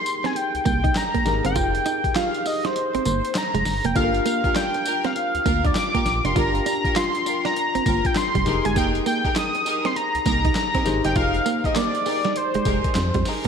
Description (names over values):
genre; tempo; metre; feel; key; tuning
R&B, new jack swing; 100 BPM; 4/4; swing 63% on 16ths; unclear; A4 = 440 Hz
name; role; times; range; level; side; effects
octave-doubled lead; melody; 0.0-13.3 s; C5 to Eb6; -24 LUFS; equal; chorus
tine electric piano; accompaniment; 0.0-13.5 s; D4 to C5; -29 LUFS; left 5 dB; overdrive, wide subtle chorus
boom bap sampler-style drum kit; drums; 0.1-13.5 s; handclaps, hi-hat, kick drum, snare drum, tambourine; -26 LUFS; equal; gated reverb
direct-recorded clean electric guitar; riff; 0.2-13.5 s; G3 to F4; -27 LUFS; right 7 dB; wide subtle chorus
solid FM bass; bass; 0.5-13.5 s; F1 to F2; -26 LUFS; equal; none
warm studio string section; stabs; 4.0-13.4 s; Eb4 to Bb4; -30 LUFS; equal; none
room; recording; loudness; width
moderate lush hall reverb, RT60 1.9 s; bright 1980s-style digital production; -19 LUFS; side -6 dB against mid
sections
0.0-13.5 A section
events
kick muted 2.8-4.0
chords
0.0 Fm11; 4.0 Gm7; 8.5 Fm11